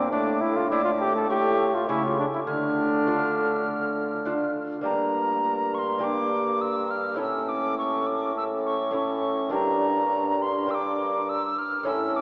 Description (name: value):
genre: classical, renaissance-style consort dance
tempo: 102 BPM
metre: 4/4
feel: straight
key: unclear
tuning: A4 = 440 Hz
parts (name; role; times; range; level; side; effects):
- mellow cornet; melody; 0.0-12.2 s; C4 to Bb4; -29 LUFS; equal; none
- mellow hollow alto recorder; second line; 0.0-12.2 s; Bb5 to F6; -28 LUFS; equal; none
- clear trombone; accompaniment; 0.0-12.2 s; A3 to D4; -33 LUFS; equal; none
- lute; accompaniment; 0.0-12.2 s; G2 to G4; -31 LUFS; equal; none
- warm bassoon; bass; 0.0-12.2 s; G2 to D3; -29 LUFS; equal; none
room: wet cathedral reverb, RT60 6.7 s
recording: worn, warbling old tape, cassette tape, warbly pitch drift, small speaker sound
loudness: -22 LUFS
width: side -30 dB against mid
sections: 0.0-4.8 A section; 4.8-12.2 B section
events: none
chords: 0.1 Asus4; 1.3 A; 2.5 Dm; 4.8 Gm; 7.2 A; 9.5 Gm